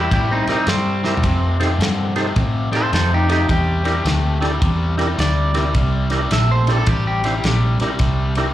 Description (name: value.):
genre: electric blues shuffle.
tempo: 106 BPM.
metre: 4/4.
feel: swing 64% on 8ths.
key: C mixolydian.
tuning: A4 = 440 Hz.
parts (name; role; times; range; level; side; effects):
electric guitar at the edge of break-up; melody; 0.0-7.6 s; C4 to E5; -23 LUFS; right 1 dB; slapback echo.
biting overdriven guitar; riff; 0.0-8.5 s; F2 to A3; -24 LUFS; left 4 dB; slapback echo.
vintage muted fingered electric bass; bass; 0.0-8.5 s; A1 to A2; -19 LUFS; equal; none.
warm soul drum kit; drums; 0.1-8.5 s; kick drum, ride cymbal, snare drum, toms; -23 LUFS; equal; none.
percussive tonewheel organ; accompaniment; 0.5-8.5 s; D4 to E5; -26 LUFS; right 3 dB; slow rotary speaker, overdrive, chorus vibrato, slapback echo.
room: small room reverb.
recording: live gig heard through the venue's PA, club reverb.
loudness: -16 LUFS.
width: side -13 dB against mid.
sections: 0.0-8.5 A section.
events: clean electric guitar solo 0.0-8.5; drum fill 1.0.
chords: 0.0 C9; 1.2 F9; 3.5 C9.